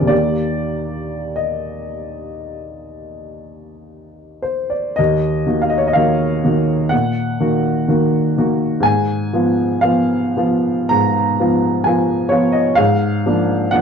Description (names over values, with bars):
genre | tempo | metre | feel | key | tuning
classical, romantic nocturne for solo piano | 46-66 BPM | 4/4 | rubato | Eb major, Eb minor from 5.0 s | A4 = 440 Hz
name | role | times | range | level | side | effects
warm upright piano | solo | 0.0-13.8 s | Bb1 to Bb5 | -15 LUFS | equal | none
room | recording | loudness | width
moderate studio reverb, RT60 0.5 s | dark, warm production | -15 LUFS | side -6 dB against mid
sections
0.0-5.0 A section; 5.0-13.8 B section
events
none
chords
0.1 Eb; 5.0 Ebm; 8.9 Fdim/Ab; 12.8 Bb7/Ab